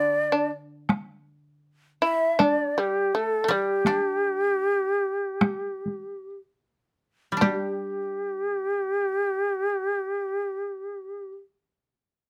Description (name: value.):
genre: japanese traditional, Japanese chamber music.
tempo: 49-82 BPM.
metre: 2/4.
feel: rubato.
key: unclear.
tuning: A4 = 440 Hz.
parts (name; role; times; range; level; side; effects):
breathy shakuhachi; melody; 0.0-11.3 s; G4 to E5; -28 LUFS; equal; none.
shamisen; second line; 0.0-11.3 s; G3 to E4; -29 LUFS; equal; none.
koto; accompaniment; 0.0-11.4 s; D3 to G4; -34 LUFS; equal; none.
taiko ensemble; percussion; 0.9-8.0 s; none; -26 LUFS; equal; none.
room: little or no reverb.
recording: close, detailed microphones.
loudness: -26 LUFS.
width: mono.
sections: 0.0-7.4 A section; 7.4-12.0 B section.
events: slowing down 3.9-7.4.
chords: none.